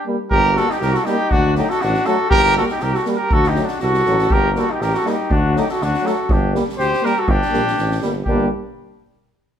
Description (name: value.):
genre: balkan folk, Balkan brass band.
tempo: 121 BPM.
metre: 2/4.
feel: swing 55% on 16ths.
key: G harmonic minor.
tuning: A4 = 440 Hz.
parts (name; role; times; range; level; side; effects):
mellow trumpet; melody; 0.0-8.5 s; F#4 to C5; -20 LUFS; right 1 dB; none.
warm flugelhorn; second line; 0.0-8.5 s; D4 to G4; -21 LUFS; equal; none.
clear trombone; accompaniment; 0.1-8.5 s; F#3 to G3; -27 LUFS; right 3 dB; none.
warm French horn; accompaniment; 0.1-8.5 s; A3 to Bb3; -26 LUFS; left 3 dB; none.
mellow tuba; bass; 0.3-8.5 s; G1 to D2; -22 LUFS; equal; none.
street-band drum kit; percussion; 0.3-8.5 s; kick drum, snare drum; -24 LUFS; equal; none.
room: moderate stone room reverb, RT60 1.1 s.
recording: band playing live in one room.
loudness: -15 LUFS.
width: side -9 dB against mid.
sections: 0.3-8.3 A section.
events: break 0.0-0.3.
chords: 0.3 Gm; 1.3 D; 2.3 Gm; 3.3 D; 4.3 Gm; 5.3 D; 6.3 Gm.